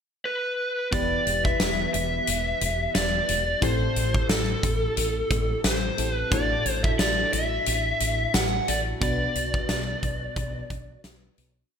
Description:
1980s-style pop; 89 BPM; 4/4; swing 55% on 16ths; A4 = 440 Hz
lead guitar through a small cranked amp; melody; 0.3-11.0 s; A4 to F#5; -26 LUFS; equal; overdrive
FM electric piano with soft pad layer; accompaniment; 0.9-11.7 s; A2 to B4; -32 LUFS; left 1 dB; chorus, phaser
woody fretless electric bass; bass; 0.9-11.6 s; E1 to B1; -30 LUFS; equal; ensemble chorus
huge arena drum kit; drums; 0.9-11.5 s; hi-hat, kick drum, snare drum; -27 LUFS; equal; gated reverb
moderate plate reverb, RT60 1.4 s, small room ambience; bright 1980s-style digital production; -22 LUFS; side -7 dB against mid
0.0-0.9 pickup bar; 0.9-11.7 verse
fade-out 9.0-11.7
0.0 N.C.; 0.9 Em; 3.6 Am7; 6.3 Dadd9/A; 9.0 Bm
0.25 | 0.93 1.60 2.27 2.95 | 3.62 4.30 4.97 5.64 | 6.32 6.99 7.67 8.34 | 9.02 9.69 10.36 11.04

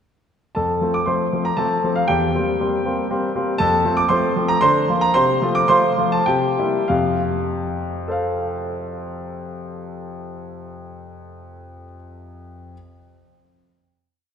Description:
classical-period piano sonatina; 96-121 BPM; 3/4; rubato; F major; A4 = 440 Hz
clear concert grand piano; solo; 0.5-12.7 s; E2 to D6; -18 LUFS; equal
wet church reverb, RT60 3.7 s; recorded in a church or concert hall; -17 LUFS; side -8 dB against mid
0.6-6.9 A section; 6.9-10.5 final chord
slowing down 2.8-6.9
0.6 F; 2.1 C7/E; 3.6 F; 4.6 Bb/D; 5.1 F/C; 6.3 C7; 6.9 F
| 0.56 1.07 1.58 | 2.08 2.59 3.10 | 3.59 4.10 4.62 | 5.15 5.69 6.27 | 6.89 7.49 8.08 | 8.68 9.28 9.87

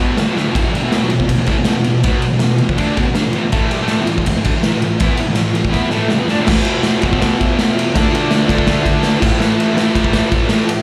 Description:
garage rock duo or trio; 163 BPM; 4/4; straight; A4 = 440 Hz
thick fuzz guitar; riff; 0.0-10.7 s; E2 to E4; -18 LUFS; equal; distortion, slapback echo
raw garage drum kit; drums; 0.2-10.8 s; crash cymbal, kick drum, ride cymbal, snare drum; -18 LUFS; equal
light reverb; live gig heard through the venue's PA, club ambience; -15 LUFS; mono
0.0-6.5 A section; 6.5-10.8 B section
drum fill 0.4, 5.7-6.5
0.0 E5; 3.5 A5; 6.5 E5; 7.9 D5; 9.2 A5
0.18 | 0.56 0.93 1.30 1.67 | 2.04 2.41 2.79 3.16 | 3.53 3.90 4.27 4.63 | 5.00 5.37 5.74 6.11 | 6.48 6.84 7.21 7.58 | 7.94 8.31 8.67 9.04 | 9.40 9.77 10.14 10.50

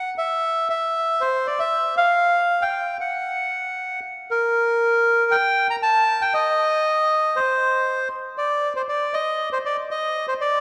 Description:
tango; 117 BPM; 4/4; rubato; A4 = 440 Hz
bandoneon; solo; 0.0-10.6 s; Bb4 to Bb5; -21 LUFS; equal
wet church reverb, RT60 3.3 s; recorded in a church or concert hall; -21 LUFS; mono
0.0-4.3 A section; 4.3-10.6 B section
| 0.18 0.69 1.20 1.72 | 2.23 2.74 3.26 3.78 | 4.29 4.81 5.32 5.83 | 6.34 6.86 7.37 7.87 | 8.38 8.89 9.39 9.90 | 10.41

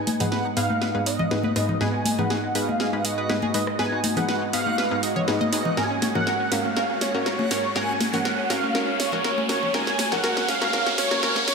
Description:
progressive house; 121 BPM; 4/4; straight; G# dorian; A4 = 440 Hz
wide unison lead; melody; 0.0-11.5 s; C#5 to G#5; -26 LUFS; right 1 dB; analog chorus, dub echo
airy breathy pad; sustained chords; 0.0-11.5 s; G#2 to D#5; -32 LUFS; right 2 dB; chorus, vintage 12-bit sampler grit
analog pluck; arpeggios; 0.0-11.5 s; G#3 to D#5; -31 LUFS; right 2 dB; chorus, phaser, ping-pong delay
wide unison pluck; stabs; 0.0-11.4 s; G#2 to B4; -28 LUFS; left 2 dB
riser; sound effects; 3.4-11.5 s; -32 LUFS; right 1 dB
backwards swelling texture; texture; 0.0-11.5 s; F#4; -38 LUFS; right 1 dB; built-in reverb
house drum kit; drums; 0.1-11.5 s; hi-hat, rim click, snare drum; -29 LUFS; right 2 dB; high-pass filter on snare, high-pass filter on hats, high-pass filter on room
congas; percussion; 0.1-11.5 s; -30 LUFS; left 3 dB
moderate lush hall reverb, RT60 2.4 s; high-pass filter; -21 LUFS; side -5 dB against mid
0.0-11.5 A section
build-up 0.0-11.5; drum fill 0.0-11.5; filter sweep on analog synth lead 0.0-11.5; filter sweep 0.0-11.5; riser 3.4-11.5
0.0 G#m; 5.8 F#/G#
0.32 0.81 1.31 | 1.81 2.30 2.80 3.29 | 3.79 4.29 4.78 5.28 | 5.77 6.27 6.77 7.26 | 7.76 8.25 8.75 9.24 | 9.74 10.24 10.73 11.23

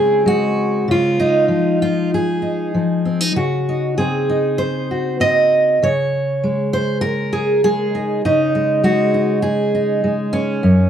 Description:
folk, solo fingerstyle acoustic guitar; 98 BPM; 4/4; rubato; Db major; A4 = 440 Hz
fingerpicked steel-string acoustic guitar; solo; 0.0-10.9 s; Gb2 to Eb5; -15 LUFS; equal
light reverb; dark, warm production; -15 LUFS; side -9 dB against mid
0.0-10.9 A section
0.0 Ab7/Db; 0.9 Fm7/Db; 3.4 Ab7/Db; 5.8 Dbsus2
0.28 | 0.89 1.50 2.12 2.74 | 3.36 3.98 4.59 5.21 | 5.82 6.43 7.04 7.64 | 8.24 8.84 9.43 10.03 | 10.63

